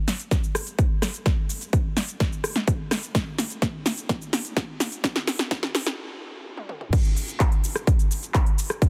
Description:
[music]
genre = EDM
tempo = 127 BPM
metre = 4/4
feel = straight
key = none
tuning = none
[part]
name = big-room dance drum kit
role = drums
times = 0.1-8.9 s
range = crash cymbal, handclaps, hi-hat, rim click, shaker, snare drum, toms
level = -29 LUFS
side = equal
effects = overdrive
[part]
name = electronic kick drum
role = drums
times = 0.3-8.9 s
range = none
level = -24 LUFS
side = equal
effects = overdrive
[sound]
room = light reverb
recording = dense, heavily limited modern master, high-pass filter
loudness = -25 LUFS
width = mono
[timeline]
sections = 0.0-6.9 A section; 6.9-8.9 B section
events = build-up 0.0-6.9; drum fill 0.0-6.0, 6.6-6.9; filter sweep 0.0-6.9; stop 6.0-6.9; drop 6.9-8.9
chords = none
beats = 0.31 0.79 | 1.26 1.73 2.20 2.68 | 3.15 3.62 4.09 4.57 | 5.04 5.51 5.98 6.46 | 6.93 7.40 7.87 8.35 | 8.82

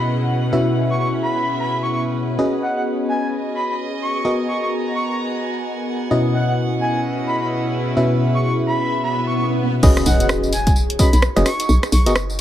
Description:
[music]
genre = UK garage, two-step garage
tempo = 129 BPM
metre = 4/4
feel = swing 61% on 16ths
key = B major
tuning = A4 = 440 Hz
[part]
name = breathy flute-like synth lead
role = melody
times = 0.0-12.4 s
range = F#5 to C#6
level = -25 LUFS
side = equal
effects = chorus, tremolo, dub echo
[part]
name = ethereal airy pad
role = sustained chords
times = 0.0-12.4 s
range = B3 to D#5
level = -29 LUFS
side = left 1 dB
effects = ensemble chorus, built-in reverb, phaser, sidechain pumping
[part]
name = FM electric piano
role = stabs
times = 0.0-12.1 s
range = B2 to E5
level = -20 LUFS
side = left 1 dB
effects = chorus
[part]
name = dark studio string section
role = texture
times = 0.0-9.8 s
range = B2 to A#5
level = -27 LUFS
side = right 2 dB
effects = sidechain pumping
[part]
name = swell and impact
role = sound effects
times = 9.1-11.7 s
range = none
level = -26 LUFS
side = right 2 dB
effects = none
[part]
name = hollow knocking FM bass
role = bass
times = 9.8-12.4 s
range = F#1 to B1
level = -17 LUFS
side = equal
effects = none
[part]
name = electronic kick drum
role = drums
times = 9.8-11.1 s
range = none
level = -16 LUFS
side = equal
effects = none
[part]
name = punchy analog drum machine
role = drums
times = 9.8-12.4 s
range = crash cymbal, hi-hat, rim click, tambourine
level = -23 LUFS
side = equal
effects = none
[sound]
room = light reverb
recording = none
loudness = -17 LUFS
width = side -11 dB against mid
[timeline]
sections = 0.0-9.8 A section; 9.8-12.4 B section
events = swell 9.1-9.8; drop 9.8-12.4; impact 9.8-11.7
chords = 0.0 C#m11/B; 0.5 F#7sus4/B; 2.4 B69; 4.2 G#m9/B; 6.1 C#m11/B; 8.0 F#7sus4/B; 9.8 B69; 11.7 G#m9 (rootless)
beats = 0.06 | 0.53 0.99 1.46 1.92 | 2.39 2.85 3.32 3.78 | 4.25 4.71 5.18 5.64 | 6.11 6.57 7.04 7.50 | 7.97 8.43 8.90 9.36 | 9.83 10.29 10.76 11.22 | 11.69 12.15

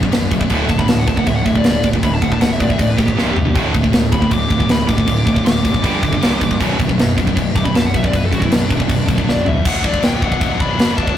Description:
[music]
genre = heavy metal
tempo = 158 BPM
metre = 4/4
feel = straight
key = B phrygian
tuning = A4 = 440 Hz
[part]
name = high-gain distorted guitar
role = riff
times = 0.0-11.2 s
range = B1 to D4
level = -22 LUFS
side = left 6 dB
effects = distortion
[part]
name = high-gain distorted guitar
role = riff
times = 0.0-9.6 s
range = B1 to G3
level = -18 LUFS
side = right 4 dB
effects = distortion
[part]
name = fuzz picked electric bass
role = bass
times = 0.0-11.1 s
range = B0 to A1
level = -23 LUFS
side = equal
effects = overdrive
[part]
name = tight metal drum kit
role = drums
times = 0.0-11.2 s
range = crash cymbal, kick drum, snare drum, toms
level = -17 LUFS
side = equal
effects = none
[part]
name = high-gain lead guitar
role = melody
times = 0.7-11.2 s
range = D4 to D6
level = -23 LUFS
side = left 2 dB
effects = distortion
[sound]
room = moderate studio reverb, RT60 0.6 s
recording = rough rehearsal-room recording, tube saturation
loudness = -13 LUFS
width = side -10 dB against mid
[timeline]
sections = 0.0-9.7 A section; 9.7-11.2 B section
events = lead electric guitar solo 0.0-9.7; drum fill 3.2-3.6, 9.3-9.7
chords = 0.0 B5; 0.5 D5; 3.2 C5; 3.6 D5; 5.8 G5; 6.2 C5; 6.6 Bm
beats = 0.13 | 0.51 0.89 1.27 1.65 | 2.04 2.42 2.80 3.18 | 3.56 3.94 4.32 4.71 | 5.09 5.47 5.85 6.23 | 6.61 6.99 7.37 7.75 | 8.13 8.51 8.89 9.27 | 9.65 10.03 10.41 10.79 | 11.17

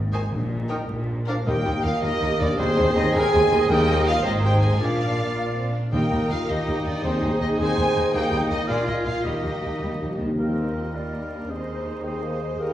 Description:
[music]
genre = quick classical-period movement for symphony orchestra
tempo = 108 BPM (dotted quarters)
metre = 6/8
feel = rubato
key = Eb major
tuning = A4 = 440 Hz
[part]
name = dark French horn section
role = sustained chords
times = 0.0-12.7 s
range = F3 to Ab4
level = -29 LUFS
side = right 1 dB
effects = none
[part]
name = dark studio double bass section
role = bass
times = 0.0-12.7 s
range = Ab1 to Eb2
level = -28 LUFS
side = equal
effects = none
[part]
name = rich chamber cello section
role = bass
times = 0.0-12.7 s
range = Eb2 to G3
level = -30 LUFS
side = equal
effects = none
[part]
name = dark chamber violin section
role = melody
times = 0.1-12.7 s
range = C5 to Ab5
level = -30 LUFS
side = left 2 dB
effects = none
[part]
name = bright clarinet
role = second line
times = 0.1-12.7 s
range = Eb4 to C5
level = -35 LUFS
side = equal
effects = none
[part]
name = flute section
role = second line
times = 0.1-12.7 s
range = C5 to Ab5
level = -32 LUFS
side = left 1 dB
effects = none
[part]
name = rich chamber violin section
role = second line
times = 0.1-12.7 s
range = G3 to C5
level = -33 LUFS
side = left 1 dB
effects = none
[part]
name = warm oboe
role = second line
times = 0.1-12.7 s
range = Bb4 to F5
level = -34 LUFS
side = right 5 dB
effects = none
[part]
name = mellow bassoon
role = accompaniment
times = 0.1-12.7 s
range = Eb3 to C4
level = -31 LUFS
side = left 1 dB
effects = none
[part]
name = warm chamber viola section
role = accompaniment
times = 0.1-12.7 s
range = Bb3 to Eb5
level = -30 LUFS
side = right 1 dB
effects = none
[part]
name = timpani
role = percussion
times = 0.3-10.9 s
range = Bb2 to Eb3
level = -30 LUFS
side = left 1 dB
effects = none
[sound]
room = wet recital hall reverb, RT60 1.5 s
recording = heard from further back in the room, vinyl crackle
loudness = -20 LUFS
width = side -12 dB against mid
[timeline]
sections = 0.0-1.5 A section; 1.5-10.4 B section; 10.4-12.7 C section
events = timpani fill 9.2-10.4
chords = 0.3 Eb/Bb; 0.9 Bb; 1.5 Eb; 2.6 Ab/Eb; 3.7 Eb; 4.2 Ab; 4.8 Bb; 5.9 Eb; 7.0 Ab/Eb; 8.1 Eb; 8.7 Bb5; 9.2 Eb; 11.5 Ab/Eb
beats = | 0.32 0.90 | 1.47 2.03 | 2.59 3.15 | 3.70 4.25 | 4.80 5.36 | 5.93 6.49 | 7.04 7.59 | 8.14 8.68 | 9.24 9.82 | 10.39 10.95 | 11.50 12.04 | 12.59

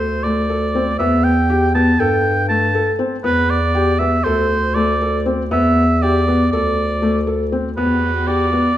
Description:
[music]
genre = contemporary instrumental, chamber music in an uneven meter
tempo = 239 BPM (eighths)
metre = 9/8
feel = straight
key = unclear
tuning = A4 = 440 Hz
[part]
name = warm oboe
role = melody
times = 0.0-8.8 s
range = B4 to A5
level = -19 LUFS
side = right 2 dB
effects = none
[part]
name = felt-muted upright piano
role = arpeggios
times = 0.0-8.7 s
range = A3 to A4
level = -18 LUFS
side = left 1 dB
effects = none
[part]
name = mellow bass clarinet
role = bass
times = 0.0-8.8 s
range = D2 to G2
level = -20 LUFS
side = left 1 dB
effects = none
[part]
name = warm chamber string section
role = sustained chords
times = 7.8-8.8 s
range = B3 to G4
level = -27 LUFS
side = equal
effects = none
[sound]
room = wet recital hall reverb, RT60 1.5 s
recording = faint mains hum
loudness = -14 LUFS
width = side -12 dB against mid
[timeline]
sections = 0.0-7.8 A section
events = none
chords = 0.0 D5; 1.0 Emadd11; 2.0 Gsus2; 3.3 Em7; 4.3 D5; 5.5 Em7; 6.5 D5; 7.8 Gmaj7/E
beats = 0.00 0.25 0.50 0.75 | 1.00 1.25 1.50 1.75 2.00 2.25 2.50 2.75 3.00 | 3.26 3.51 3.76 4.01 4.26 4.51 4.76 5.01 5.26 | 5.52 5.77 6.02 6.27 6.52 6.77 7.02 7.28 7.53 | 7.78 8.03 8.28 8.53

